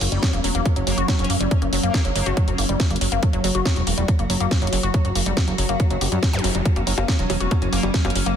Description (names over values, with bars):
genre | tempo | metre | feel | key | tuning
psychedelic trance | 140 BPM | 4/4 | straight | F# major | A4 = 440 Hz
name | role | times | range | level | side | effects
pulsing gated texture | sustained chords | 0.0-8.4 s | F#3 to F#4 | -26 LUFS | equal | chorus, built-in reverb, sidechain pumping
woody wave-folded pluck | riff | 0.0-8.4 s | F#3 to G4 | -27 LUFS | left 1 dB | chorus, auto-pan, sidechain pumping, digital delay
fat analog bass | bass | 0.0-8.3 s | E1 to F#2 | -24 LUFS | equal | none
garage drum kit | drums | 0.0-8.3 s | bongos, hi-hat, snare drum | -26 LUFS | left 1 dB | studio reverb
electronic kick drum | drums | 0.2-8.0 s | none | -20 LUFS | equal | studio reverb
metallic wobble bass | second line | 0.9-2.4, 7.7-7.9 s | A#3 to C#4 | -34 LUFS | left 2 dB | chorus, sidechain pumping, high-pass filter, digital delay
zap | sound effects | 6.3-6.4 s | none | -31 LUFS | equal | none
room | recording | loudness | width
light reverb | dense, heavily limited modern master | -18 LUFS | side -8 dB against mid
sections
0.0-8.4 A section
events
none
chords
0.0 F#5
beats
0.23 0.66 1.08 | 1.51 1.94 2.37 2.80 | 3.23 3.65 4.08 4.51 | 4.94 5.37 5.80 6.23 | 6.66 7.08 7.51 7.94